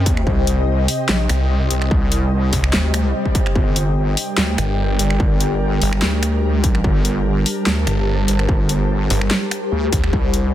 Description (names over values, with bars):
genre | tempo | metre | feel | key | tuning
heavy wobble dubstep | 146 BPM | 4/4 | swing 54% on 16ths, half-time | G minor | A4 = 445 Hz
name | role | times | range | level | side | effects
lush unison pad | sustained chords | 0.0-10.5 s | C3 to A5 | -25 LUFS | right 2 dB | chorus, sidechain pumping
wobble bass | bass | 0.0-10.5 s | G1 to G2 | -18 LUFS | equal | chorus, overdrive
ethereal airy pad | texture | 0.0-10.5 s | G4 to G5 | -26 LUFS | left 3 dB | ensemble chorus, built-in reverb, phaser, sidechain pumping
dubstep drum kit | drums | 0.1-10.4 s | finger snaps, handclaps, hi-hat, snare drum | -22 LUFS | equal | none
electronic kick drum | drums | 0.1-10.2 s | none | -19 LUFS | equal | distortion
snarling distorted saw bass | bass | 1.3-10.1 s | G1 to D2 | -18 LUFS | equal | distortion, overdrive
swell | sound effects | 2.9-3.6 s | none | -28 LUFS | left 4 dB | none
room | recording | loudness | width
light reverb, digital ambience | dense, heavily limited modern master | -15 LUFS | side -12 dB against mid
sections
0.0-10.5 A section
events
swell 2.9-3.6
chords
0.0 Cm; 3.6 Gm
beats
| 0.27 0.68 1.09 1.50 | 1.91 2.32 2.73 3.14 | 3.56 3.97 4.38 4.79 | 5.20 5.61 6.02 6.43 | 6.84 7.25 7.67 8.08 | 8.49 8.90 9.31 9.72 | 10.13 10.54